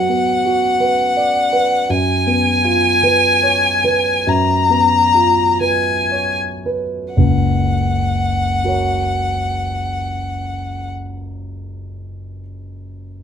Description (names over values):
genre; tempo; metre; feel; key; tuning
classical, romantic duo for violin and grand piano; 36-56 BPM; 4/4; rubato; F# major; A4 = 440 Hz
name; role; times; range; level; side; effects
clear violin; melody; 0.0-10.9 s; F#5 to A#5; -16 LUFS; left 2 dB; none
warm concert grand piano; accompaniment; 0.0-13.2 s; F#1 to D5; -18 LUFS; right 1 dB; none
room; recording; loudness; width
light reverb; minimal, uncompressed stereo recording; -14 LUFS; side -7 dB against mid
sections
0.0-7.2 A section; 7.2-12.9 B section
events
slowing down 0.0-7.2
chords
0.0 Bm/F#; 1.9 C#7/F#; 7.2 F#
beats
0.81 | 1.90 3.04 4.26 5.61 | 7.16 8.62 10.04 11.49